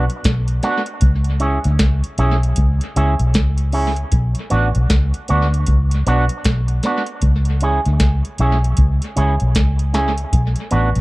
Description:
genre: roots reggae.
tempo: 77 BPM.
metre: 4/4.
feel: swing 62% on 16ths.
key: unclear.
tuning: A4 = 438 Hz.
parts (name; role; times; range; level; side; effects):
electric guitar with an envelope filter; accompaniment; 0.0-10.9 s; B3 to G#4; -22 LUFS; right 2 dB; dub echo.
vintage muted fingered electric bass; bass; 0.0-11.0 s; A1 to D2; -16 LUFS; equal; none.
soft vintage rhythm box; drums; 0.1-11.0 s; hi-hat, kick drum, snare drum; -19 LUFS; equal; dub echo.
room: light reverb.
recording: echo-heavy mix.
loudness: -15 LUFS.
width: side -21 dB against mid.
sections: 0.0-11.0 A section.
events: none.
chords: 0.0 Bm; 1.0 C#m; 4.1 Bm; 7.2 C#m; 10.3 Bm.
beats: 0.25 | 1.02 1.80 2.57 3.35 | 4.12 4.90 5.67 6.45 | 7.22 8.00 8.78 9.55 | 10.33.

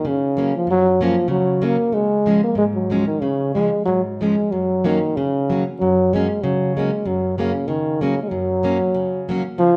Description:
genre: alpine folk, alpine dance band.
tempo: 95 BPM.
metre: 2/4.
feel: swing 54% on 8ths, rubato.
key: F# major.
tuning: A4 = 440 Hz.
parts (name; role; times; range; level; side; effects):
clear euphonium; melody; 0.0-9.8 s; C#3 to A#3; -21 LUFS; equal; none.
picked plugged-in steel-string acoustic guitar; accompaniment; 0.0-9.8 s; F#2 to C#4; -25 LUFS; equal; none.
room: wet recital hall reverb, RT60 1.3 s.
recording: dark, warm production.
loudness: -19 LUFS.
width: mono.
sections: 0.0-9.6 A section.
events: none.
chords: 0.0 F#; 1.9 C#; 4.5 F#.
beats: 0.05 | 0.68 1.30 | 1.93 2.57 | 3.21 3.86 | 4.50 5.14 | 5.78 6.41 | 7.04 7.66 | 8.29 8.93 | 9.56.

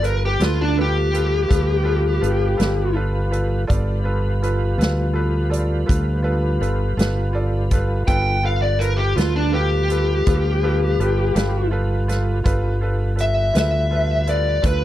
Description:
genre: slow blues.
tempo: 55 BPM (dotted quarters).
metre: 12/8.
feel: straight.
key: G mixolydian.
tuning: A4 = 441 Hz.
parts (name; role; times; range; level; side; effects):
smooth overdriven lead guitar; melody; 0.0-14.8 s; D4 to G5; -21 LUFS; left 1 dB; none.
bright concert grand piano; accompaniment; 0.0-14.8 s; F4 to D5; -27 LUFS; right 2 dB; none.
tonewheel organ; sustained chords; 0.0-14.8 s; G3 to B4; -29 LUFS; equal; slow rotary speaker, chorus vibrato.
fingered electric bass; bass; 0.0-14.8 s; G1 to D2; -20 LUFS; equal; none.
swinging big-band drum kit; drums; 0.0-14.8 s; hi-hat, kick drum, snare drum; -21 LUFS; equal; none.
room: little or no reverb.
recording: dry, close 1970s-style studio recording, lossy compression artefacts.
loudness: -17 LUFS.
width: side -13 dB against mid.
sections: 0.0-14.8 A section.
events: none.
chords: 0.0 G7.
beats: 0.40 1.49 2.59 | 3.68 4.78 5.88 6.97 | 8.07 9.16 10.26 11.35 | 12.45 13.54 14.64.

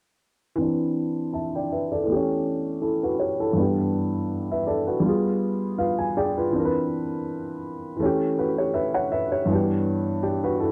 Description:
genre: hip hop.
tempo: 81 BPM.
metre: 4/4.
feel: swing 56% on 16ths.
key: unclear.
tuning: A4 = 439 Hz.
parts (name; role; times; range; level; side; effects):
dark upright piano; accompaniment; 0.6-10.7 s; G2 to A5; -25 LUFS; equal; cassette tape, low-pass filter.
room: wet studio reverb, RT60 0.6 s.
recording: dark, warm production.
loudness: -25 LUFS.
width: mono.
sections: 0.6-10.7 A section.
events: filter sweep on upright piano 0.6-10.7; upright piano fill 5.4-6.5.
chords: 0.6 Cmaj9; 2.1 A7; 3.6 Em7/G; 5.0 G7b9; 6.5 Cmaj9; 8.0 A7; 9.5 Em7/G.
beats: | 0.59 1.33 2.07 2.81 | 3.55 4.29 5.03 5.77 | 6.51 7.26 8.00 8.74 | 9.48 10.22.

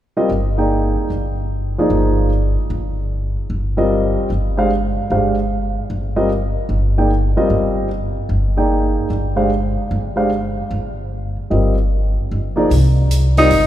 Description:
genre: modal jazz.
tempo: 150 BPM.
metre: 4/4.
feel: swing 65% on 8ths.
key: C minor.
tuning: A4 = 440 Hz.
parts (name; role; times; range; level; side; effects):
warm grand piano; accompaniment; 0.2-13.5 s; F3 to G5; -19 LUFS; equal; none.
upright bass; bass; 0.3-13.7 s; G1 to C2; -18 LUFS; equal; none.
hi-hat; drums; 12.7-13.6 s; none; -30 LUFS; right 1 dB; none.
warm alto saxophone; melody; 13.4-13.7 s; Eb4; -11 LUFS; equal; none.
room: wet church reverb, RT60 3.6 s.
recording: recorded in a church or concert hall.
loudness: -15 LUFS.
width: side -12 dB against mid.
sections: 0.0-12.7 A section.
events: none.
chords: 0.0 Cm11; 12.7 Cm7.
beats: 0.30 0.70 1.10 | 1.50 1.90 2.30 2.70 | 3.10 3.50 3.90 4.30 | 4.70 5.10 5.50 5.90 | 6.30 6.70 7.10 7.50 | 7.90 8.30 8.70 9.10 | 9.50 9.90 10.30 10.70 | 11.10 11.50 11.90 12.30 | 12.70 13.10 13.50.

